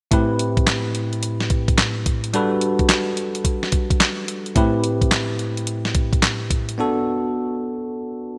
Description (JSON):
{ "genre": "R&B, new jack swing", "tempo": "108 BPM", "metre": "4/4", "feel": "swing 64% on 16ths", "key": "A dorian", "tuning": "A4 = 440 Hz", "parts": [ { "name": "bell-like tine electric piano", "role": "accompaniment", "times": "0.1-8.4 s", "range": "A2 to B4", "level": "-24 LUFS", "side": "equal", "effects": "subtle chorus" }, { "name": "clean 12-bit digital drum machine", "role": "drums", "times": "0.1-6.8 s", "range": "handclaps, hi-hat, kick drum, snare drum", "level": "-22 LUFS", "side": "equal", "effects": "none" } ], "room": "moderate lush hall reverb, RT60 2.1 s", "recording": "bright 1980s-style digital production", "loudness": "-21 LUFS", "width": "mono", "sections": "0.1-8.4 A section", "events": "break 6.8-8.4", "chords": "0.1 Am7; 2.3 Gmaj9; 4.6 Am7; 6.8 Bm7" }